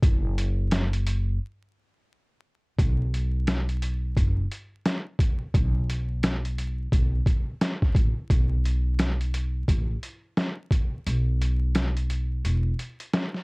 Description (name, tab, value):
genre	hip hop, boom-bap hip-hop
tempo	87 BPM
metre	4/4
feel	swing 60% on 16ths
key	unclear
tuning	A4 = 445 Hz
part	upright bass	bass	0.0-12.7 s	E1 to B1	-25 LUFS	equal	none
part	trip hop sampler-style drum kit	drums	0.0-13.4 s	hi-hat, kick drum, snare drum	-24 LUFS	equal	none
room	little or no reverb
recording	worn, warbling old tape, cassette tape, vinyl crackle, warbly pitch drift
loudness	-23 LUFS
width	side -36 dB against mid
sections	0.0-2.8 A section; 2.8-13.4 B section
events	break 1.4-2.8; kick muted 11.1-13.4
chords	none